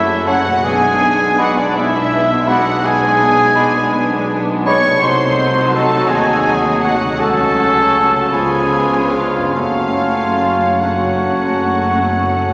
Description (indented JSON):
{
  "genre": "classical, slow romantic movement for symphony orchestra",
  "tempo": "46-57 BPM (dotted quarters)",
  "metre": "12/8",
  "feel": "rubato",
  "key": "F# minor",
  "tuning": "A4 = 440 Hz",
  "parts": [
    { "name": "warm studio violin section", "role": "melody", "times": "0.0-12.5 s", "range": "D5 to C#6", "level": "-25 LUFS", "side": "equal", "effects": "none" },
    { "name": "warm studio violin section", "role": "second line", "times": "0.0-12.5 s", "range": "A3 to A4", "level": "-26 LUFS", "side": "equal", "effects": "none" },
    { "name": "rich studio viola section", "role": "accompaniment", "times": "0.0-12.5 s", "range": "F#3 to B3", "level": "-28 LUFS", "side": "equal", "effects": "none" },
    { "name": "mellow French horn section", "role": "sustained chords", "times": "0.0-12.5 s", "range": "F#3 to F#4", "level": "-28 LUFS", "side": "equal", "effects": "none" },
    { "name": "warm trumpet section", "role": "stabs", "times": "0.0-12.5 s", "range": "D4 to C#5", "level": "-18 LUFS", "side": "equal", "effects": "none" },
    { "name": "dark studio double bass section", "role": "bass", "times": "0.0-12.5 s", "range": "F#1 to Eb2", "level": "-29 LUFS", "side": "equal", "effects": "none" },
    { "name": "warm studio cello section", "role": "bass", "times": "0.0-12.5 s", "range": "F#2 to Eb3", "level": "-32 LUFS", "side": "equal", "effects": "none" },
    { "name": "warm tuba", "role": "bass", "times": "0.0-12.5 s", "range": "F#1 to Eb2", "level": "-27 LUFS", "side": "equal", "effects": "none" },
    { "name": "clear oboe", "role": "second line", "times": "0.3-12.5 s", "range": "C#5 to Eb5", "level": "-30 LUFS", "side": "equal", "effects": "none" },
    { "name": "mellow clarinet", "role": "second line", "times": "0.3-12.5 s", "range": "B3 to D4", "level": "-30 LUFS", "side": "equal", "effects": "none" },
    { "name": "mellow silver concert flute", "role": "second line", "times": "0.3-12.5 s", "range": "A5 to B5", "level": "-28 LUFS", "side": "equal", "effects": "none" },
    { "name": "warm bassoon", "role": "accompaniment", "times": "0.3-12.5 s", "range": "E#3 to G#3", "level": "-27 LUFS", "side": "equal", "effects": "none" },
    { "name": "concert harp", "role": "arpeggios", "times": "0.5-12.5 s", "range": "F#2 to G#4", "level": "-32 LUFS", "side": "equal", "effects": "none" }
  ],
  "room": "wet church reverb, RT60 2.9 s",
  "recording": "none",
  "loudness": "-15 LUFS",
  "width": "mono",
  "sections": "0.0-12.5 A section",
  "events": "none",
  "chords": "0.0 F#m; 0.6 G#dim/B; 5.0 Cdim7; 7.2 F#m/C#; 8.3 C#7; 9.5 F#m"
}